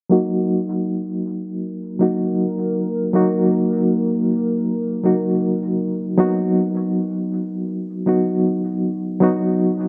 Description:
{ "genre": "trip hop", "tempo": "79 BPM", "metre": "4/4", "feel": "swing 59% on 16ths", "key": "Eb minor", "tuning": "A4 = 440 Hz", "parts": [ { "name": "reed electric piano", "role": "accompaniment", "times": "0.1-9.9 s", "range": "Gb3 to Gb4", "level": "-21 LUFS", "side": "equal", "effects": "medium tremolo, vintage 12-bit sampler grit, low-pass filter" }, { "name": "deep dark ambient pad", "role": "sustained chords", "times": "1.9-9.2 s", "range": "Bb4", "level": "-28 LUFS", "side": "equal", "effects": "chorus, built-in reverb" } ], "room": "moderate plate reverb, RT60 2.8 s", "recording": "nothing above 10.7 kHz", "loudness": "-20 LUFS", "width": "mono", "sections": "0.1-9.9 A section", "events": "filter sweep on reed electric piano 0.1-9.9; filter sweep on ambient pad 0.1-9.9", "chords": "0.1 Ebm; 6.2 B", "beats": "| 0.11 0.87 1.63 2.39 | 3.15 3.91 4.67 5.42 | 6.18 6.94 7.70 8.46 | 9.22" }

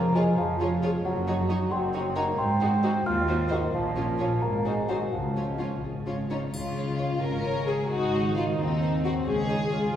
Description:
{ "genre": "cinematic, playful, whimsical film cue", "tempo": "88 BPM (dotted quarters)", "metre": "6/8", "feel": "straight", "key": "Db major", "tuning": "A4 = 440 Hz", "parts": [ { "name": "small celesta", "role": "melody", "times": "0.0-5.8 s", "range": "Eb5 to F6", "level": "-35 LUFS", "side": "left 3 dB", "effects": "none" }, { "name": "warm bassoon", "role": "accompaniment", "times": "0.0-5.8 s", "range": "Eb3 to F4", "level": "-29 LUFS", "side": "right 2 dB", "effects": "none" }, { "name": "concert harp", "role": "arpeggios", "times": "0.0-10.0 s", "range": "F2 to Db5", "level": "-33 LUFS", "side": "left 2 dB", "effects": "none" }, { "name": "warm studio cello section", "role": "bass", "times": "0.0-9.8 s", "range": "Db2 to Db3", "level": "-30 LUFS", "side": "right 1 dB", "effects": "none" }, { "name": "warm studio double bass section", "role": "bass", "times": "0.0-10.0 s", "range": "F1 to Eb2", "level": "-33 LUFS", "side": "right 1 dB", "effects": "none" }, { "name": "warm studio viola section", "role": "accompaniment", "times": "0.1-10.0 s", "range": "C4 to F4", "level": "-34 LUFS", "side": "equal", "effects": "none" }, { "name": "warm studio violin section", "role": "melody", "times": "0.2-9.8 s", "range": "C5 to Db5", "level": "-41 LUFS", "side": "left 1 dB", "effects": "none" }, { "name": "dark studio violin section", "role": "second line", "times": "0.2-9.9 s", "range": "Eb4 to Bb4", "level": "-32 LUFS", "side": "left 2 dB", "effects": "none" }, { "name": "triangle", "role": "percussion", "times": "6.5-7.4 s", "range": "none", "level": "-47 LUFS", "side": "left 3 dB", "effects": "none" } ], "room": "wet scoring stage reverb, RT60 2.0 s", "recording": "heard from further back in the room, small room ambience", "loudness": "-24 LUFS", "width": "side -10 dB against mid", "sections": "0.0-6.5 A section; 6.5-10.0 A section", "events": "none", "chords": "0.0 Db/F; 1.1 Ebm7/Gb; 2.4 Ab7; 3.7 Bbm; 4.4 Ab9; 5.1 Db; 7.9 Ab7b9; 9.3 Db", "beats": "0.38 | 1.05 1.72 | 2.39 3.06 | 3.74 4.42 | 5.13 5.83 | 6.54 7.23 | 7.91 8.59 | 9.27 9.94" }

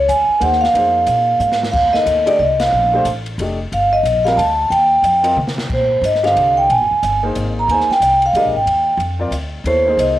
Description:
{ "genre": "modal jazz", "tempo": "182 BPM", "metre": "3/4", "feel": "swing 62% on 8ths", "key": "Bb mixolydian from 5.7 s", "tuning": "A4 = 443 Hz", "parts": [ { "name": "vibraphone with medium mallets", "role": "melody", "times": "0.0-10.2 s", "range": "C5 to Bb5", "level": "-13 LUFS", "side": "right 1 dB", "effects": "cassette tape, plate reverb" }, { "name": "upright bass", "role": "bass", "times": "0.0-10.2 s", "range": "F1 to C3", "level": "-23 LUFS", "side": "equal", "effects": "none" }, { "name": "swinging big-band drum kit", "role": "drums", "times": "0.1-10.1 s", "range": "crash cymbal, hi-hat, kick drum, ride cymbal, snare drum, toms", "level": "-28 LUFS", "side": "equal", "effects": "none" }, { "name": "warm grand piano", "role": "accompaniment", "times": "0.4-10.2 s", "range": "D3 to Eb5", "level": "-24 LUFS", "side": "left 3 dB", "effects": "cassette tape, plate reverb" } ], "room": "moderate studio reverb, RT60 0.5 s", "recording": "home recording on cassette", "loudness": "-13 LUFS", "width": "side -14 dB against mid", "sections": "0.0-5.7 A section; 5.7-10.2 B section", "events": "drum fill 1.4-1.7, 5.4-5.7; band accent 2.6", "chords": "0.0 Dbmaj9 (rootless); 1.7 Ebmaj9; 5.7 Bb13sus4; 9.7 Eb7sus4", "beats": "0.09 0.42 | 0.75 1.08 1.41 | 1.74 2.07 2.40 | 2.73 3.06 3.39 | 3.72 4.05 4.38 | 4.71 5.04 5.37 | 5.70 6.03 6.36 | 6.69 7.02 7.35 | 7.68 8.01 8.34 | 8.67 9.00 9.33 | 9.66 9.99" }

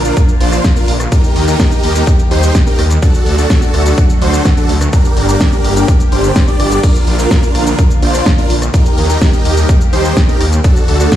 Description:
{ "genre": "EDM, festival progressive house", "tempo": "126 BPM", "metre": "4/4", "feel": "straight", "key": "unclear", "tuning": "A4 = 440 Hz", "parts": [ { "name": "lush unison pad", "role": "sustained chords", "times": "0.0-11.2 s", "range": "D3 to G4", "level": "-23 LUFS", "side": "equal", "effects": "chorus, phaser, sidechain pumping" }, { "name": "big supersaw lead", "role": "riff", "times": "0.0-11.2 s", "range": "D4 to D5", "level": "-16 LUFS", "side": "right 1 dB", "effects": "phaser, sidechain pumping, ping-pong delay" }, { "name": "wide detuned saw bass", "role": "bass", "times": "0.0-11.1 s", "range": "G1 to Eb2", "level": "-14 LUFS", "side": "equal", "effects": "chorus, sidechain pumping" }, { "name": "big-room dance drum kit", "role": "drums", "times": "0.0-11.2 s", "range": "cabasa, crash cymbal, hi-hat, rim click, snare drum", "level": "-19 LUFS", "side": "equal", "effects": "none" }, { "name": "electronic kick drum", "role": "drums", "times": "0.2-11.2 s", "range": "none", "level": "-11 LUFS", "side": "equal", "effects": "none" } ], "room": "digital ambience", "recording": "played on a big sound system in a bare room, stone room reverb", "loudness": "-9 LUFS", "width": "side -12 dB against mid", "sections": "0.0-11.2 A section", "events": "none", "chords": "0.0 Bb; 1.1 Eb; 3.0 D; 4.9 Gm; 6.8 Bb; 8.7 Eb; 10.6 D", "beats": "0.17 0.64 | 1.12 1.60 2.07 2.55 | 3.02 3.50 3.98 4.45 | 4.93 5.41 5.88 6.36 | 6.83 7.31 7.79 8.26 | 8.74 9.21 9.69 10.17 | 10.64 11.12" }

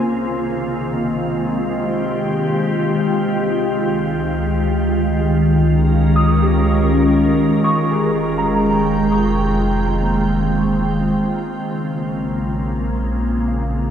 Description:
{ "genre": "ambient", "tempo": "free time", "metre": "none", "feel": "none", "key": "F minor", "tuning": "A4 = 440 Hz", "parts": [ { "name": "glassy FM pad", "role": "sustained chords", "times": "0.0-13.9 s", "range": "C2 to G5", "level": "-17 LUFS", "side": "equal", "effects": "ensemble chorus, built-in reverb" }, { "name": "mellow tine electric piano", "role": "arpeggios", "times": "0.0-13.9 s", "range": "Bb3 to Eb6", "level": "-24 LUFS", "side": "right 1 dB", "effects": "ensemble chorus, tape echo" }, { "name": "round analog bass", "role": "bass", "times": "3.8-13.9 s", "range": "F1 to Db2", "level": "-21 LUFS", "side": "equal", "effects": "none" } ], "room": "wet huge ambient reverb, RT60 7.9 s", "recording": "dark, warm production", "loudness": "-15 LUFS", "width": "side -8 dB against mid", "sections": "0.0-13.9 A section", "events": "fade-out on tine electric piano 0.0-13.9; filter sweep on ambient pad 0.0-13.9; fade-out 9.0-13.9", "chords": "0.0 Fm9/C; 3.8 Db69; 7.7 Fm9; 11.6 Bbm9", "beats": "free time" }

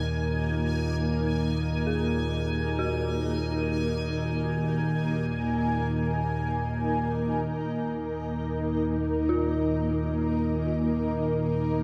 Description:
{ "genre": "dark ambient drone", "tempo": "free time", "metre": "none", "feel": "none", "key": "Eb minor", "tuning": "A4 = 442 Hz", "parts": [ { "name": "granular cloud pad", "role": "sustained chords", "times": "0.0-11.8 s", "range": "Bb3 to Bb4", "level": "-32 LUFS", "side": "equal", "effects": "built-in reverb" }, { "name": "dark detuned synth bell", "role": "arpeggios", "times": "0.0-11.8 s", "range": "F4 to Ab4", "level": "-39 LUFS", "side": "equal", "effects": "chorus, tape echo" }, { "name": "analog drone", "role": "drone", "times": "0.0-11.8 s", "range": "Eb2 to Bb2", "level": "-30 LUFS", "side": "equal", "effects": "chorus" }, { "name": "bubbling stepped-filter texture", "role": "texture", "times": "0.0-11.8 s", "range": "Ab5", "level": "-39 LUFS", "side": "equal", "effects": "chorus, built-in reverb" } ], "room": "wet cathedral reverb, RT60 5.7 s", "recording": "in a vast, echoing space", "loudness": "-28 LUFS", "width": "mono", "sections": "0.0-7.4 A section; 7.4-11.8 B section", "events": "none", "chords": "0.0 Eb5", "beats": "free time" }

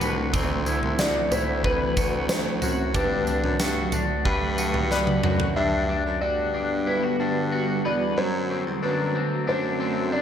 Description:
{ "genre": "dream pop", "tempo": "92 BPM", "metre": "4/4", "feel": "straight", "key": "G major", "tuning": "A4 = 440 Hz", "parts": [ { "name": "ethereal airy pad", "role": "sustained chords", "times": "0.0-10.2 s", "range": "D3 to F#5", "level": "-29 LUFS", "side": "right 1 dB", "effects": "ensemble chorus, built-in reverb" }, { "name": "electric guitar at the edge of break-up", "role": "arpeggios", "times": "0.0-10.2 s", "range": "F#3 to B4", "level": "-28 LUFS", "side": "left 3 dB", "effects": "analog chorus, tape echo" }, { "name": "warm baritone saxophone", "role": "bass", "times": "0.0-10.2 s", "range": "C2 to G2", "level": "-30 LUFS", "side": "equal", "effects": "none" }, { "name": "huge arena drum kit", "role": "drums", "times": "0.0-5.5 s", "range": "kick drum, snare drum, tambourine, toms", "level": "-26 LUFS", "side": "right 1 dB", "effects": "none" }, { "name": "felt-muted upright piano", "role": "melody", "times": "1.0-10.2 s", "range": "B4 to E5", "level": "-28 LUFS", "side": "left 1 dB", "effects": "tape echo" } ], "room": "moderate scoring stage reverb, RT60 2.0 s", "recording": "none", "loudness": "-22 LUFS", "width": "side -8 dB against mid", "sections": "0.0-5.6 A section; 5.6-10.2 B section", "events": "drum fill 4.9-5.6", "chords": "0.3 D13; 3.0 Gmaj7; 8.2 D7", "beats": "| 0.34 0.99 1.65 2.30 | 2.95 3.60 4.26 4.91 | 5.56 6.21 6.87 7.52 | 8.17 8.82 9.47 10.13" }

